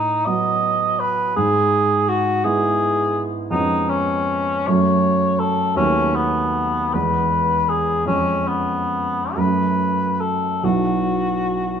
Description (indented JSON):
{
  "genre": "classical, romantic duo for cor anglais and grand piano",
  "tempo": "44-57 BPM (dotted quarters)",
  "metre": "6/8",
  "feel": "rubato",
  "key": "E major",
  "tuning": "A4 = 440 Hz",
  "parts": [
    { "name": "mellow cor anglais", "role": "melody", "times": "0.0-11.8 s", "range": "B3 to D#5", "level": "-19 LUFS", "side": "left 1 dB", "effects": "none" },
    { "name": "warm baby grand piano", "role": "accompaniment", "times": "0.0-11.8 s", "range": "B1 to F#4", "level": "-21 LUFS", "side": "right 3 dB", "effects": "none" }
  ],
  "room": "moderate recital hall reverb, RT60 1.6 s",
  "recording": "faint mains hum",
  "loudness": "-17 LUFS",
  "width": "side -8 dB against mid",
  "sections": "0.0-11.8 A section",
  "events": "none",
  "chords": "0.0 B7/A; 1.4 E/G#; 3.5 C#7/E#; 4.7 F#m; 5.8 B7/D#; 6.9 E; 8.1 C#7/E#; 9.4 F#m; 10.6 Bsus4"
}